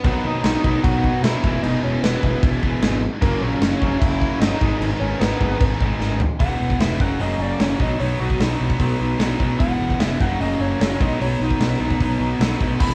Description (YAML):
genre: punk rock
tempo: 151 BPM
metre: 4/4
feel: straight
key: unclear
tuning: A4 = 442 Hz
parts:
  - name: distorted electric guitar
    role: riff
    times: 0.0-12.9 s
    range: E2 to B3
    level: -28 LUFS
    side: equal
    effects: distortion
  - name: tight distorted guitar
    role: riff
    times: 0.0-12.9 s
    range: F#2 to E4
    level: -30 LUFS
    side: equal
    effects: distortion
  - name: fuzz picked electric bass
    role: bass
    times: 0.0-12.9 s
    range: E1 to B2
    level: -26 LUFS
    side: equal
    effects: overdrive
  - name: big rock drum kit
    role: drums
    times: 0.0-12.9 s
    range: crash cymbal, hi-hat, kick drum, snare drum, toms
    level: -24 LUFS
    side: equal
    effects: none
  - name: lead guitar through a small cranked amp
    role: melody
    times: 0.1-12.9 s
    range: A#3 to B5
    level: -28 LUFS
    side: equal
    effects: overdrive
room: moderate studio ambience, RT60 0.5 s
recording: band playing live in one room, cassette tape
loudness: -20 LUFS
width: mono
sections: 0.0-6.4 A section; 6.4-12.9 B section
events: drum fill 6.0-6.4; lead electric guitar solo 6.4-12.9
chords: 0.0 B; 1.4 E; 3.2 F#; 4.6 G#m; 6.4 E; 7.0 F#; 7.8 B; 9.6 E; 10.2 F#; 11.0 B